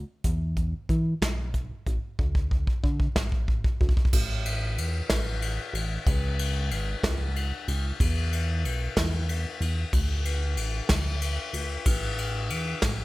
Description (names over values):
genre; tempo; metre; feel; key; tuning
indie folk with a building arrangement; 62 BPM (dotted quarters); 6/8; straight; A major; A4 = 435 Hz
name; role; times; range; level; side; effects
chorused synth bass; bass; 0.0-13.0 s; G#1 to E3; -28 LUFS; equal; none
soft brush drum kit; drums; 0.2-13.0 s; crash cymbal, hi-hat, kick drum, ride cymbal, snare drum; -27 LUFS; equal; none
room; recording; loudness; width
little or no reverb; none; -25 LUFS; side -19 dB against mid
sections
0.0-4.1 A section; 4.1-13.0 B section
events
build-up 0.0-4.1; drum fill 0.0-4.1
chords
none